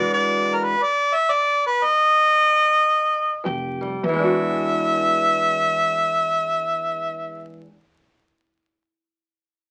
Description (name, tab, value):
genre	acoustic country blues, solo or duo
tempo	free time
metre	none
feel	none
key	E mixolydian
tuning	A4 = 435 Hz
part	bright harmonica	melody	0.0-7.6 s	A#4 to E5	-20 LUFS	equal	none
part	fingerpicked steel-string acoustic guitar	accompaniment	0.0-7.8 s	E2 to G4	-28 LUFS	equal	none
part	upright bass	bass	3.5-7.6 s	F1 to E2	-35 LUFS	equal	none
room	moderate studio reverb, RT60 0.6 s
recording	very old 78 rpm record, vinyl crackle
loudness	-20 LUFS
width	mono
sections	0.0-4.0 A section; 4.0-8.8 B section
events	slowing down 0.0-4.0; stop 0.0-3.5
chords	0.0 E9; 3.5 Fsus2; 4.0 E9